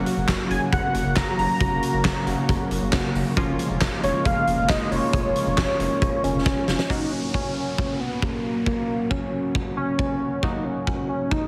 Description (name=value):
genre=synth-pop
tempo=136 BPM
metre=4/4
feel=straight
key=F# major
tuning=A4 = 439 Hz
part: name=funky polysynth comp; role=accompaniment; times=0.0-11.5 s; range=E#3 to F#4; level=-32 LUFS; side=equal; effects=chorus
part: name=warm analog pad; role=sustained chords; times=0.0-6.9 s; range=C#3 to F#4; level=-31 LUFS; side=equal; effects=chorus
part: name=rubbery square bass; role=bass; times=0.0-6.8 s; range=E#1 to F#1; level=-32 LUFS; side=equal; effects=none
part: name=huge arena drum kit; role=drums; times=0.1-11.4 s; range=handclaps, hi-hat, kick drum, snare drum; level=-28 LUFS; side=equal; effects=none
part: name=unison lead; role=melody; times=0.5-11.5 s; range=A#3 to A#5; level=-28 LUFS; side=equal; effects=analog delay
part: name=downlifter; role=sound effects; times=6.9-10.4 s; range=none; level=-40 LUFS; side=equal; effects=none
room=moderate lush hall reverb, RT60 1.6 s, studio reverb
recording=heavily compressed radio sound, multiband compression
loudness=-23 LUFS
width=mono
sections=0.0-6.9 A section; 6.9-11.5 B section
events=drum fill 6.5-6.9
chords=0.0 F#; 3.4 A#m7/E#; 6.9 F#; 10.4 D#m